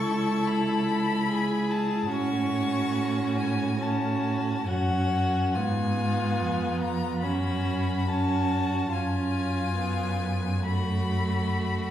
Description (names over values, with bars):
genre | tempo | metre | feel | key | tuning
classical, slow romantic movement for string quartet | 62-74 BPM | 4/4 | rubato | F# minor | A4 = 442 Hz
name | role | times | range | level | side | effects
clear violin | melody | 0.0-11.9 s | F#5 to C#6 | -33 LUFS | left 4 dB | none
rich violin | second line | 0.0-11.9 s | E#4 to A4 | -32 LUFS | left 3 dB | none
clear viola | accompaniment | 0.0-11.9 s | A3 to E4 | -30 LUFS | right 2 dB | none
rich cello | bass | 0.0-11.9 s | C#2 to A2 | -28 LUFS | right 1 dB | none
room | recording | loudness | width
wet recital hall reverb, RT60 1.7 s | heard from further back in the room | -24 LUFS | side -11 dB against mid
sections
0.0-11.9 A section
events
none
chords
0.0 A/C#; 2.1 F#m/A; 5.5 Fdim/Ab; 7.2 F#m; 8.9 C#7/F#; 10.7 F#m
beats
0.47 1.29 | 2.11 2.94 3.80 4.67 | 5.54 6.39 7.22 8.10 | 8.94 9.78 10.66 11.60